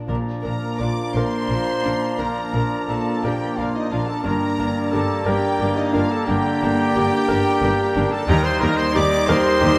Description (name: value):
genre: classical, romantic movement for piano and orchestra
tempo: 59 BPM (dotted quarters)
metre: 12/8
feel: rubato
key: Bb major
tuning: A4 = 440 Hz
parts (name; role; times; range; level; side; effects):
- clear baby grand piano; melody; 0.0-9.8 s; Eb2 to Bb4; -27 LUFS; equal; none
- rich studio viola section; accompaniment; 0.0-9.7 s; D4 to Bb4; -35 LUFS; equal; none
- clear clarinet; second line; 0.1-9.8 s; Bb3; -34 LUFS; equal; none
- concert flute; second line; 0.1-9.8 s; Bb5; -33 LUFS; equal; none
- warm cor anglais; second line; 0.1-9.8 s; D5 to Eb5; -35 LUFS; equal; none
- warm bassoon; accompaniment; 0.1-9.8 s; F3 to G3; -36 LUFS; equal; none
- mellow French horn section; sustained chords; 0.1-9.8 s; G3 to Eb4; -29 LUFS; equal; none
- clear chamber double bass section; bass; 0.1-9.7 s; G1 to Eb2; -30 LUFS; equal; none
- warm chamber cello section; bass; 0.1-9.7 s; Eb2 to Bb2; -30 LUFS; equal; none
- timpani; percussion; 0.1-1.1 s; Bb2; -36 LUFS; equal; none
- rich studio violin section; second line; 0.4-9.8 s; Eb5 to D6; -36 LUFS; equal; none
- dark trumpet section; stabs; 0.4-9.8 s; Eb4 to D5; -27 LUFS; equal; none
- rich chamber violin section; melody; 0.5-9.8 s; Eb5 to D6; -36 LUFS; equal; none
room: moderate scoring stage reverb, RT60 2.0 s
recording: none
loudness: -21 LUFS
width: mono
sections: 0.1-9.8 A section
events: none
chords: 0.1 Bb; 4.2 Gm; 8.3 Eb